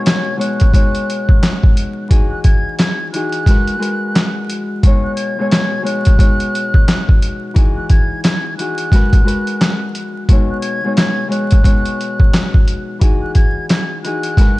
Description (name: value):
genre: hip hop, boom-bap hip-hop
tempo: 88 BPM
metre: 4/4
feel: swing 60% on 16ths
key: B major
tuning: A4 = 436 Hz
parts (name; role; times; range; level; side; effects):
- Celtic harp; accompaniment; 0.0-14.6 s; B2 to C#5; -20 LUFS; left 2 dB; cassette tape, high-pass filter, low-pass filter
- mellow hollow silver concert flute; melody; 0.1-14.6 s; F#6 to G#6; -24 LUFS; right 2 dB; high-pass filter, low-pass filter
- trip hop sampler-style drum kit; drums; 0.1-14.6 s; handclaps, hi-hat, kick drum, snare drum; -12 LUFS; equal; none
room: small room ambience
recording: vinyl crackle, nothing above 10.5 kHz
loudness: -12 LUFS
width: side -19 dB against mid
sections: 0.0-14.6 A section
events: none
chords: 0.0 B69; 2.1 Emaj9; 3.5 G#m9; 4.8 B69; 7.6 Emaj9; 8.9 G#m9; 10.3 B69; 13.0 Emaj9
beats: 0.06 0.74 1.43 | 2.11 2.79 3.47 4.15 | 4.83 5.52 6.20 6.88 | 7.56 8.24 8.93 9.61 | 10.29 10.97 11.65 12.34 | 13.02 13.70 14.38